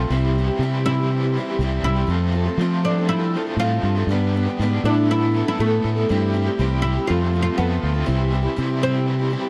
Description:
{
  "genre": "folk rock and heartland rock",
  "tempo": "120 BPM",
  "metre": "4/4",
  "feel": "straight",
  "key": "C major",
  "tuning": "A4 = 441 Hz",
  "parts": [
    { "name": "picked acoustic archtop guitar", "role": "accompaniment", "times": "0.0-9.5 s", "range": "G2 to B4", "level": "-29 LUFS", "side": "equal", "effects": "none" },
    { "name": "dark studio string section", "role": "sustained chords", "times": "0.0-9.5 s", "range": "F3 to A4", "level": "-37 LUFS", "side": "equal", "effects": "none" },
    { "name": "raw garage guitar", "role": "riff", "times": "0.0-9.5 s", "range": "F2 to A4", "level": "-31 LUFS", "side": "equal", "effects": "overdrive, tremolo" },
    { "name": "fingered electric bass", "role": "bass", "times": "0.0-9.3 s", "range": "C2 to F3", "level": "-23 LUFS", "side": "equal", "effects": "none" },
    { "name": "oud", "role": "melody", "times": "0.9-9.1 s", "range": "A3 to F4", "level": "-26 LUFS", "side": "equal", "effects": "none" }
  ],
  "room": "little or no reverb",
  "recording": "dry, close 1970s-style studio recording",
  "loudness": "-21 LUFS",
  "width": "mono",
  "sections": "0.0-9.5 A section",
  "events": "none",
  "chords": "0.1 C; 2.1 F; 4.1 G; 4.8 Asus2; 6.1 C/G; 7.1 F; 8.1 C"
}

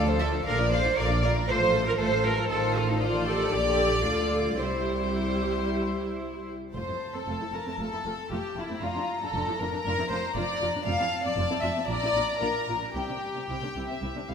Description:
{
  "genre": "quick classical-period movement for string orchestra",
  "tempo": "110-120 BPM",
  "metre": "4/4",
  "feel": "rubato",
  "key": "F major",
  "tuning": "A4 = 440 Hz",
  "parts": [
    { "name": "warm symphonic violin section", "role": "melody", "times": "0.0-14.3 s", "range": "A4 to Bb5", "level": "-34 LUFS", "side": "left 6 dB", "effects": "none" },
    { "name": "dark symphonic viola section", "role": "accompaniment", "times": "0.0-14.3 s", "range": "D3 to A4", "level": "-33 LUFS", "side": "equal", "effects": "none" },
    { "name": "rich symphonic cello section", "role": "bass", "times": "0.0-14.3 s", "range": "F2 to D5", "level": "-31 LUFS", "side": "right 2 dB", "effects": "none" },
    { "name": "rich symphonic double bass section", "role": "bass", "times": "0.0-14.3 s", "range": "F1 to D2", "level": "-31 LUFS", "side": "right 2 dB", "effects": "none" },
    { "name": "warm symphonic violin section", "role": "second line", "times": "0.2-14.3 s", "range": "E4 to F5", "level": "-30 LUFS", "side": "left 2 dB", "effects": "none" }
  ],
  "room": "wet concert hall reverb, RT60 2.3 s",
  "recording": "none",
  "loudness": "-25 LUFS",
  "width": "side -7 dB against mid",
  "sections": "0.0-6.8 A section; 6.8-14.3 B section",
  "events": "none",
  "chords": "0.5 Bb; 1.5 F/A; 2.5 F7/A; 3.5 Bbmaj7; 4.6 C; 6.8 F; 8.8 Bb/F; 10.9 F; 11.9 Bb; 12.9 C"
}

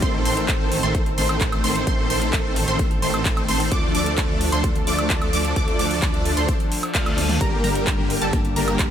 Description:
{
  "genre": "EDM, festival progressive house",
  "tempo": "130 BPM",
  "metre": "4/4",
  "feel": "straight",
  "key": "unclear",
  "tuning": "A4 = 440 Hz",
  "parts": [
    { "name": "lush unison pad", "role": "sustained chords", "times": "0.0-8.9 s", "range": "D3 to A4", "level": "-28 LUFS", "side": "equal", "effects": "chorus, sidechain pumping" },
    { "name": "wide unison pluck", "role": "arpeggios", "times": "0.0-8.9 s", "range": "A5 to F6", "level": "-29 LUFS", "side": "right 1 dB", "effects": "cassette tape, sidechain pumping, ping-pong delay" },
    { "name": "supersaw chords", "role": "riff", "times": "0.0-8.9 s", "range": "D3 to F5", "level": "-24 LUFS", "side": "equal", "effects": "ensemble chorus, cassette tape, sidechain pumping, ping-pong delay" },
    { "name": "detuned saw bass", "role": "bass", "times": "0.0-8.9 s", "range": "G1 to D2", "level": "-27 LUFS", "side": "equal", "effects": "sidechain pumping" },
    { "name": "big-room dance drum kit", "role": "drums", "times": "0.0-8.9 s", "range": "handclaps, hi-hat, toms, woodblock", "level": "-27 LUFS", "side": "equal", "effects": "none" },
    { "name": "electronic kick drum", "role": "drums", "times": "0.0-8.9 s", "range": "none", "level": "-23 LUFS", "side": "equal", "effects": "none" },
    { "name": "reverse cymbal", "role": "sound effects", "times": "6.7-7.4 s", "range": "none", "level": "-32 LUFS", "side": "left 2 dB", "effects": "none" },
    { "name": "clean electric guitar", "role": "accompaniment", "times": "7.6-8.9 s", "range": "G2 to D4", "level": "-27 LUFS", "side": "left 4 dB", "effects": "sidechain pumping" }
  ],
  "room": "light reverb, digital ambience",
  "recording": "none",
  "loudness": "-18 LUFS",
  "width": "side -9 dB against mid",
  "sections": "0.0-8.9 A section",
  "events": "reverse cymbal 6.7-7.4; drum fill 7.2",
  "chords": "0.0 Adim; 3.7 Dm; 7.4 Gm"
}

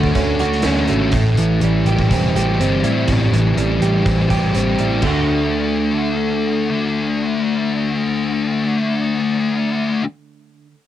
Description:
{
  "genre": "rock, shoegaze and dream pop",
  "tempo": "123 BPM",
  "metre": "4/4",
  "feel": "straight",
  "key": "D major",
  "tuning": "A4 = 440 Hz",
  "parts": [
    { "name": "direct-recorded clean electric guitar", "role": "riff", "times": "0.0-10.0 s", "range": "A2 to G4", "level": "-23 LUFS", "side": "right 8 dB", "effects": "reverse reverb, cassette tape" },
    { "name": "thick fuzz guitar", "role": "riff", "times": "0.0-10.0 s", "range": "A2 to F#4", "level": "-17 LUFS", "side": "left 3 dB", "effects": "distortion, ensemble chorus, cassette tape" },
    { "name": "vintage muted fingered electric bass", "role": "bass", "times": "0.0-10.0 s", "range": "E1 to A2", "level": "-21 LUFS", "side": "right 1 dB", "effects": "none" },
    { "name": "gated 80s drum kit", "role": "drums", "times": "0.0-5.1 s", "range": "china cymbal, hi-hat, kick drum, snare drum", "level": "-23 LUFS", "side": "equal", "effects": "cassette tape" }
  ],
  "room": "moderate booth ambience, RT60 0.2 s",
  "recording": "home recording on cassette",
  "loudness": "-15 LUFS",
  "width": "side -12 dB against mid",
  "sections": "0.0-5.0 A section; 5.0-8.9 B section",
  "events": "none",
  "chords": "0.0 Dmaj7; 1.1 Am7; 5.0 D"
}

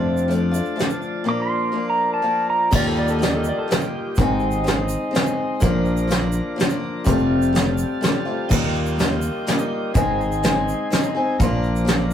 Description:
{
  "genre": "folk rock and heartland rock",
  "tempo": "124 BPM",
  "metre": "3/4",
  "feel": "straight",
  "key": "unclear",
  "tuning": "A4 = 440 Hz",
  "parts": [
    { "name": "picked steel-string acoustic guitar", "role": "accompaniment", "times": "0.0-12.1 s", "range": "F2 to Ab4", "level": "-23 LUFS", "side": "left 2 dB", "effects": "none" },
    { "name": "tonewheel organ", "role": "sustained chords", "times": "0.0-12.1 s", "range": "Eb4 to Bb5", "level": "-30 LUFS", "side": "equal", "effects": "slow rotary speaker" },
    { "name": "fingered electric bass", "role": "bass", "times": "0.0-12.1 s", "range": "F1 to F2", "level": "-24 LUFS", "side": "equal", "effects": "none" },
    { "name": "tube shaker", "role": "percussion", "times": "0.2-12.1 s", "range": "none", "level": "-40 LUFS", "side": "right 6 dB", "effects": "none" },
    { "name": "soft brush drum kit", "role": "drums", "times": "0.3-12.0 s", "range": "crash cymbal, hi-hat, kick drum, snare drum", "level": "-21 LUFS", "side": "right 1 dB", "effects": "none" },
    { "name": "pedal steel guitar", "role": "second line", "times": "1.3-4.6 s", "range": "G4 to D6", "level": "-22 LUFS", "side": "right 1 dB", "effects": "none" }
  ],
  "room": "light reverb",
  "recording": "rough rehearsal-room recording",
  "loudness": "-18 LUFS",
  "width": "side -9 dB against mid",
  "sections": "0.0-2.7 A section; 2.7-12.1 B section",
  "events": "pedal steel guitar solo 0.0-2.7",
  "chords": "0.0 F6; 1.3 Bb; 2.7 Ebadd9; 4.2 Ab; 5.6 Bb; 7.1 Fadd9; 8.5 Ebadd9; 10.0 Ab; 11.4 Bb"
}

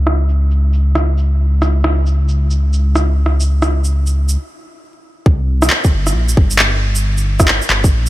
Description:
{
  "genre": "future garage",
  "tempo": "135 BPM",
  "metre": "4/4",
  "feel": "swing 63% on 16ths",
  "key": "unclear",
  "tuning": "A4 = 440 Hz",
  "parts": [
    { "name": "dark detuned saw bass", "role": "bass", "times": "0.0-8.1 s", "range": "G1 to Db2", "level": "-14 LUFS", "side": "equal", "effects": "tube saturation, sidechain pumping" },
    { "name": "electronic rim click, shaker and handclaps", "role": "drums", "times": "0.1-8.1 s", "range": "none", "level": "-17 LUFS", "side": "equal", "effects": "none" },
    { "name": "electronic kick drum", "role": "drums", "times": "5.3-7.9 s", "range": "none", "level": "-11 LUFS", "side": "equal", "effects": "none" }
  ],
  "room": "little or no reverb",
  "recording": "vinyl crackle, low-pass filter",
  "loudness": "-12 LUFS",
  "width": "side -16 dB against mid",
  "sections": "0.0-5.3 A section; 5.3-8.1 B section",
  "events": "filter sweep on drum 0.0-5.3; filter sweep 0.0-5.3; stop 4.4-5.3",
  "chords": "none"
}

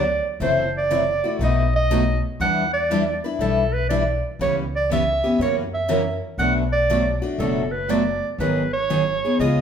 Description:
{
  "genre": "acoustic string swing (jazz manouche)",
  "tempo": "120 BPM",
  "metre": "4/4",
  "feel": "swing 66% on 8ths",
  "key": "unclear",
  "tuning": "A4 = 440 Hz",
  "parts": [
    { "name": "bright clarinet", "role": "melody", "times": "0.0-9.6 s", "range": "A4 to F#5", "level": "-22 LUFS", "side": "right 2 dB", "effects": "none" },
    { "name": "picked steel-string acoustic guitar", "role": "accompaniment", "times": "0.0-9.6 s", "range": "B2 to B4", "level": "-24 LUFS", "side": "left 3 dB", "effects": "none" },
    { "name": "picked steel-string acoustic guitar", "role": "accompaniment", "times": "0.0-9.6 s", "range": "B2 to B4", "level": "-29 LUFS", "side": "right 6 dB", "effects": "none" },
    { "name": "upright bass", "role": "bass", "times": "0.0-9.6 s", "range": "F#1 to F#2", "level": "-26 LUFS", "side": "left 1 dB", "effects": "none" }
  ],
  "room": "moderate large studio reverb, RT60 1.1 s",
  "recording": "band playing live in one room",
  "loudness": "-19 LUFS",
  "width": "side -8 dB against mid",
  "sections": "0.0-9.6 A section",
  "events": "none",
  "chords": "0.4 F#m7b5; 1.4 B7; 2.4 Em7; 4.4 C#m7b5; 5.4 F#7; 6.4 Bm7; 8.4 G#m7"
}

